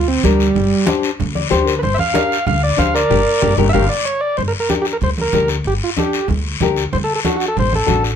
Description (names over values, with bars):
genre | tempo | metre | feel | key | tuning
latin, cumbia | 188 BPM | 4/4 | straight | G minor | A4 = 439 Hz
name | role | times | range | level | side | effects
overdriven combo organ | melody | 0.0-8.0 s | G3 to F5 | -17 LUFS | right 2 dB | none
upright bass | bass | 0.0-8.1 s | G1 to D2 | -20 LUFS | equal | none
nylon-string guitar | accompaniment | 0.2-8.1 s | D4 to D5 | -19 LUFS | left 8 dB | none
congas | percussion | 0.2-8.0 s | none | -22 LUFS | right 4 dB | none
guiro | percussion | 0.2-8.2 s | none | -25 LUFS | left 6 dB | none
room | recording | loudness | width
moderate studio reverb, RT60 0.6 s | none | -14 LUFS | side -8 dB against mid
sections
0.0-4.4 A section; 4.4-8.2 B section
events
transistor combo organ solo 0.0-4.4; nylon-string guitar fill 1.2-1.8; drum fill 3.1-4.4; band accent 3.1-4.4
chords
0.0 Gm; 6.9 D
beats
0.24 | 0.56 0.88 1.20 1.52 | 1.83 2.15 2.47 2.79 | 3.11 3.42 3.74 4.06 | 4.38 4.70 5.01 5.33 | 5.65 5.97 6.29 6.61 | 6.92 7.24 7.56 7.88